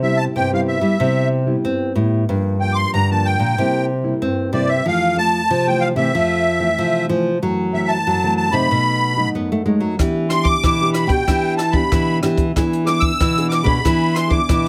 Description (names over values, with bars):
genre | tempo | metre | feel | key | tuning
samba and choro | 93 BPM | 4/4 | straight | C major | A4 = 439 Hz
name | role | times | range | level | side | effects
musette accordion | melody | 0.0-14.7 s | D5 to E6 | -21 LUFS | equal | none
nylon-string guitar | accompaniment | 0.0-14.7 s | F2 to G#4 | -25 LUFS | equal | none
nylon-string guitar | bass | 0.0-14.7 s | G2 to C4 | -22 LUFS | equal | none
compact cocktail drum kit | drums | 10.0-14.7 s | hi-hat, kick drum, rim click | -22 LUFS | equal | none
room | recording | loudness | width
light reverb | none | -18 LUFS | mono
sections
0.0-14.7 A section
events
none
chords
0.0 Cmaj7; 2.3 Gm7; 3.6 C7; 4.9 Fmaj7; 7.4 F#m7b5; 8.7 B7; 10.0 Em7; 12.6 E7